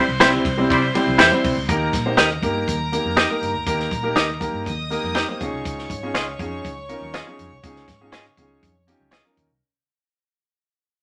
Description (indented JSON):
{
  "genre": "uptempo 1960s-style soul",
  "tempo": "121 BPM",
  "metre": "4/4",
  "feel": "straight",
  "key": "unclear",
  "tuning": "A4 = 440 Hz",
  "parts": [
    { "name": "mellow horn section", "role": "second line", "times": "0.0-0.9 s", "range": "G3 to C5", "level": "-23 LUFS", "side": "equal", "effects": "none" },
    { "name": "warm studio violin section", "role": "second line", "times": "0.0-9.3 s", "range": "Bb4 to Eb6", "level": "-32 LUFS", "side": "equal", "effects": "none" },
    { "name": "vintage muted fingered electric bass", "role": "bass", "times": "0.1-9.6 s", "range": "C2 to C3", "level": "-32 LUFS", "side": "equal", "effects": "none" },
    { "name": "dark concert grand piano", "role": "accompaniment", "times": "0.2-9.5 s", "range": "G3 to C5", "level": "-26 LUFS", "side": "equal", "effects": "none" },
    { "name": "direct-recorded clean electric guitar", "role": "stabs", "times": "0.2-9.2 s", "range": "Db4 to E5", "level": "-20 LUFS", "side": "equal", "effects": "none" },
    { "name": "compact cocktail drum kit", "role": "drums", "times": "0.2-9.5 s", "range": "hi-hat, kick drum, ride cymbal, snare drum", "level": "-27 LUFS", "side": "equal", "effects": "none" },
    { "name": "finger snaps", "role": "percussion", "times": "0.2-9.2 s", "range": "none", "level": "-30 LUFS", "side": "equal", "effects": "none" },
    { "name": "congas", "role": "percussion", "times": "0.3-9.5 s", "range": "none", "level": "-39 LUFS", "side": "equal", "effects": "none" }
  ],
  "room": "wet studio reverb, RT60 0.5 s",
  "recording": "none",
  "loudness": "-20 LUFS",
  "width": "mono",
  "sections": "0.0-1.7 A section; 1.7-9.6 B section",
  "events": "band accent 0.0-1.7; fade-out 1.7-9.6",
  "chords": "0.0 C; 1.7 Eb; 5.4 Dbadd9"
}